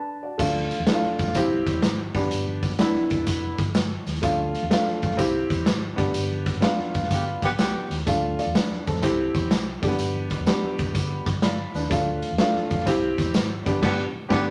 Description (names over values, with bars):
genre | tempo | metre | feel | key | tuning
uptempo 1960s-style soul | 125 BPM | 4/4 | swing 66% on 8ths | G mixolydian | A4 = 438 Hz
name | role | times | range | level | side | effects
warm upright piano | accompaniment | 0.0-14.5 s | A3 to B5 | -28 LUFS | equal | none
vintage muted fingered electric bass | bass | 0.4-14.5 s | E1 to F2 | -33 LUFS | equal | none
raw garage drum kit | drums | 0.4-14.5 s | crash cymbal, hi-hat, kick drum, snare drum | -27 LUFS | equal | none
congas | percussion | 0.4-13.6 s | none | -44 LUFS | equal | none
tambourine | percussion | 0.4-13.7 s | none | -45 LUFS | equal | none
mellow horn section | second line | 7.1-8.0, 13.8-14.5 s | D3 to G4 | -30 LUFS | equal | none
room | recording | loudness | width
moderate studio reverb, RT60 0.7 s | none | -24 LUFS | mono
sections
0.4-14.5 A section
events
break 0.0-0.4; upright piano fill 0.0-0.4, 11.2-11.9; band accent 6.1-8.1, 13.8-14.5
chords
0.4 Dm; 1.4 C; 2.1 G; 4.2 Dm; 5.2 C; 5.9 G; 8.1 Dm; 9.0 C; 9.7 G; 11.9 Dm; 12.9 C; 13.6 G